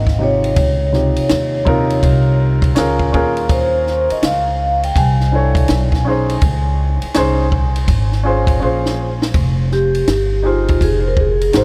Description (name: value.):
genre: hip hop, jazz-hop.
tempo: 82 BPM.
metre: 4/4.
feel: swing 66% on 16ths.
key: unclear.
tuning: A4 = 441 Hz.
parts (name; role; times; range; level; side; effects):
vibraphone with soft mallets; melody; 0.0-11.6 s; F4 to Ab5; -22 LUFS; equal; analog delay.
dark grand piano; accompaniment; 0.0-11.6 s; C3 to Db5; -22 LUFS; equal; none.
upright bass; bass; 0.0-11.6 s; F1 to Eb2; -20 LUFS; equal; none.
compact cocktail drum kit; drums; 0.1-11.6 s; hi-hat, kick drum, ride cymbal, snare drum; -21 LUFS; equal; none.
room: light reverb, small room ambience.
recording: none.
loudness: -15 LUFS.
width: mono.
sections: 0.0-9.3 A section; 9.3-11.6 B section.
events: drum fill 8.6-9.3; vibraphone solo 9.3-11.6.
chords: 0.0 Ab; 0.6 Dbmaj9#11; 3.1 Eb7sus4; 5.7 Bm11; 6.4 Abadd11; 8.6 Bbm9; 9.3 Fm7.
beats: | 0.56 1.30 2.03 2.76 | 3.49 4.22 4.95 5.69 | 6.42 7.15 7.88 8.61 | 9.35 10.08 10.81 11.54.